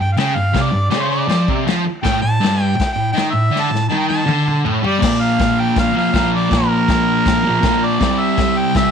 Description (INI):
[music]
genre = garage rock duo or trio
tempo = 161 BPM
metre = 4/4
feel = straight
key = unclear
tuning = A4 = 439 Hz
[part]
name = clear harmonica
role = melody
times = 0.0-8.9 s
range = Bb4 to A5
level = -20 LUFS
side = right 1 dB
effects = overdrive
[part]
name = fuzz guitar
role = riff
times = 0.0-8.9 s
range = G2 to C4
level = -16 LUFS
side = equal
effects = distortion
[part]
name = vintage drum kit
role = drums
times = 0.2-8.8 s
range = crash cymbal, kick drum, snare drum, toms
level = -21 LUFS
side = left 3 dB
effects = none
[sound]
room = light reverb, studio reverb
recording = 1960s-style stereo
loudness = -14 LUFS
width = side -7 dB against mid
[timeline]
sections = 0.0-5.0 A section; 5.0-8.9 B section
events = drum fill 3.5-5.0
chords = 0.0 G5; 2.0 Gsus2; 5.0 Bb5; 8.0 C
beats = 0.17 | 0.54 0.92 1.29 1.66 | 2.04 2.41 2.78 3.15 | 3.52 3.90 4.27 4.64 | 5.01 5.38 5.76 6.13 | 6.50 6.87 7.24 7.62 | 7.99 8.36 8.73